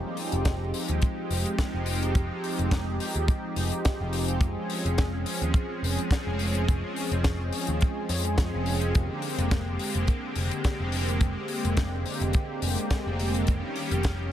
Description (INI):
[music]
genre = nu-disco, nu disco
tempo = 106 BPM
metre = 4/4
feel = swing 55% on 16ths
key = F minor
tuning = A4 = 440 Hz
[part]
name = warm analog pad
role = accompaniment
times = 0.0-14.3 s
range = D3 to Ab4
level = -30 LUFS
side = equal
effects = chorus, sidechain pumping, tape echo
[part]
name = tight funk drum kit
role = drums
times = 0.2-14.2 s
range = hi-hat, snare drum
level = -34 LUFS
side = left 4 dB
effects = none
[part]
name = picked electric bass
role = bass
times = 0.3-14.3 s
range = F1 to F2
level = -29 LUFS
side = equal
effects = tube saturation, sidechain pumping
[part]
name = kick drum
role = drums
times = 0.5-14.2 s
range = none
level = -24 LUFS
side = equal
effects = none
[sound]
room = small room ambience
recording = none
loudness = -25 LUFS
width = side -11 dB against mid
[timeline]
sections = 0.0-14.3 A section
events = none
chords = 0.0 Fm9; 4.4 Dbmaj7/F; 8.9 Bb13/F; 13.5 Eb7/F